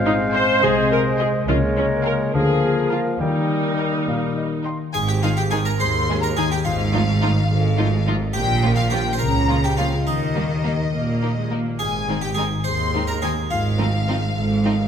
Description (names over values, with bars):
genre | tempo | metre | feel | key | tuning
cinematic, playful, whimsical film cue | 70 BPM (dotted quarters) | 6/8 | straight | Ab major | A4 = 440 Hz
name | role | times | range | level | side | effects
small flute group | second line | 0.0-4.6 s | Bb4 to C5 | -29 LUFS | right 2 dB | none
warm clarinet | second line | 0.0-4.8 s | Db5 to C6 | -27 LUFS | left 1 dB | none
clear bassoon | accompaniment | 0.0-4.7 s | F3 to Ab3 | -28 LUFS | right 2 dB | none
mellow French horn section | sustained chords | 0.0-4.6 s | F3 to C4 | -25 LUFS | left 2 dB | none
concert harp | arpeggios | 0.0-14.9 s | Ab2 to C5 | -26 LUFS | left 7 dB | none
rich studio cello section | bass | 0.0-14.9 s | Eb2 to Eb3 | -26 LUFS | right 2 dB | none
rich studio double bass section | bass | 0.0-14.9 s | Ab1 to Eb2 | -25 LUFS | right 3 dB | none
rich studio viola section | accompaniment | 0.1-14.7 s | Eb3 to C5 | -25 LUFS | equal | none
rich studio violin section | melody | 0.3-14.9 s | Eb5 to C6 | -28 LUFS | left 4 dB | none
rich studio violin section | second line | 0.3-14.7 s | Bb3 to F5 | -31 LUFS | left 1 dB | none
harpsichord | melody | 4.9-14.9 s | Eb4 to C5 | -27 LUFS | right 2 dB | none
triangle | percussion | 4.9-6.0, 11.8-12.9 s | none | -47 LUFS | left 3 dB | none
room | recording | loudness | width
wet scoring stage reverb, RT60 1.7 s | none | -18 LUFS | side -8 dB against mid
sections
0.0-4.9 A section; 4.9-14.9 B section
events
none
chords
0.0 Ab; 0.6 Ab/C; 1.5 Bbm7/Db; 2.3 Bb7/D; 3.2 Eb; 4.9 Ab5; 6.7 F7/Ab; 8.4 Bbm; 9.2 Bbm/Db; 10.1 Eb; 11.8 Ab; 13.5 F7/Ab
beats
0.62 | 1.48 2.33 | 3.20 4.07 | 4.94 5.80 | 6.65 7.50 | 8.35 9.21 | 10.07 10.94 | 11.80 12.66 | 13.51 14.36